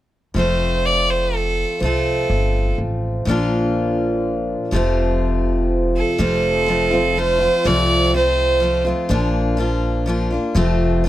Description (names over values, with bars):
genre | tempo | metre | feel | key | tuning
honky-tonk and classic country | 124 BPM | 3/4 | straight | F major | A4 = 435 Hz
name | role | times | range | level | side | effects
picked steel-string acoustic guitar | accompaniment | 0.3-11.1 s | F2 to F4 | -20 LUFS | left 1 dB | none
upright bass | bass | 0.3-11.1 s | F1 to C2 | -22 LUFS | equal | none
bright fiddle | melody | 0.4-2.8, 6.0-8.8 s | A4 to D5 | -19 LUFS | right 2 dB | none
room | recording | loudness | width
little or no reverb | close, detailed microphones | -16 LUFS | side -14 dB against mid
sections
0.4-6.2 A section; 6.2-11.1 B section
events
none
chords
0.4 F; 3.3 Bb; 4.7 F; 9.1 Bb; 10.6 F